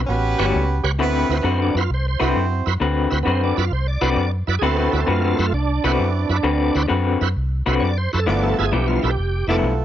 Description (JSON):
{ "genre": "electric blues shuffle", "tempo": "132 BPM", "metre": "4/4", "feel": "swing 68% on 8ths", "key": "D mixolydian", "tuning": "A4 = 439 Hz", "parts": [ { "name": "vintage muted fingered electric bass", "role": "bass", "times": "0.0-9.8 s", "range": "F1 to F#2", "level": "-21 LUFS", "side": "equal", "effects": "none" }, { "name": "dark horn section", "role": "stabs", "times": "0.1-9.8 s", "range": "A3 to C5", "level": "-25 LUFS", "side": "right 3 dB", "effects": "plate reverb" }, { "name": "bright tonewheel organ", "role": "accompaniment", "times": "0.4-9.6 s", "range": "A3 to F#5", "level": "-24 LUFS", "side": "right 6 dB", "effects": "slow rotary speaker, overdrive, chorus vibrato" }, { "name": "electric guitar through a small old amp", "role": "riff", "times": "0.4-9.7 s", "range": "G2 to B4", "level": "-21 LUFS", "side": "left 5 dB", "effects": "tremolo" } ], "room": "light reverb", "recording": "nothing above 7.5 kHz", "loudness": "-17 LUFS", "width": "side -11 dB against mid", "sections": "1.0-9.8 A section", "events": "none", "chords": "0.1 A13; 1.0 D13; 8.3 G13", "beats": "0.08 0.54 | 0.99 1.44 1.90 2.35 | 2.81 3.26 3.72 4.17 | 4.62 5.08 5.54 5.99 | 6.44 6.90 7.36 7.81 | 8.27 8.72 9.18 9.63" }